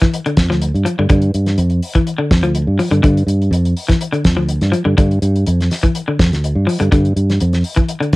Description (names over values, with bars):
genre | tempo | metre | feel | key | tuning
afrobeat | 124 BPM | 4/4 | straight | unclear | A4 = 440 Hz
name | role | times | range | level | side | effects
electric guitar at the edge of break-up | arpeggios | 0.0-8.2 s | D3 to F3 | -17 LUFS | left 2 dB | cassette tape
damped 70s drum kit | drums | 0.0-8.2 s | hi-hat, kick drum, snare drum | -16 LUFS | equal | none
fingered electric bass | bass | 0.4-8.2 s | D2 to G2 | -14 LUFS | equal | none
room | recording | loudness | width
little or no reverb | home recording on cassette | -13 LUFS | side -21 dB against mid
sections
0.0-8.2 A section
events
none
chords
0.0 G5